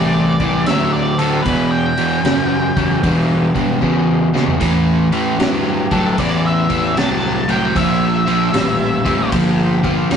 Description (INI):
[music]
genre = blues rock power trio and southern rock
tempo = 76 BPM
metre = 4/4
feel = swing 66% on 8ths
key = unclear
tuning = A4 = 440 Hz
[part]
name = octave-fuzz lead guitar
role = melody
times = 0.0-9.3 s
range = A4 to A5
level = -21 LUFS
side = equal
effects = distortion
[part]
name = overdriven semi-hollow guitar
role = riff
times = 0.0-10.2 s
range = E2 to G3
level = -15 LUFS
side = equal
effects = spring reverb
[part]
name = fuzz fingered electric bass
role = bass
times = 0.0-10.2 s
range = F#1 to B2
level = -22 LUFS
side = equal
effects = overdrive
[part]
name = vintage drum kit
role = drums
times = 0.4-10.2 s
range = kick drum, ride cymbal, snare drum, splash cymbal, toms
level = -23 LUFS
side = equal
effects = none
[sound]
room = moderate stone room reverb, RT60 1.1 s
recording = rough rehearsal-room recording, nothing above 10.7 kHz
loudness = -13 LUFS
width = side -7 dB against mid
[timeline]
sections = 0.0-10.2 A section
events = drum fill 3.8-4.6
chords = 0.0 Am; 1.5 Em; 4.6 Am7; 7.8 A#5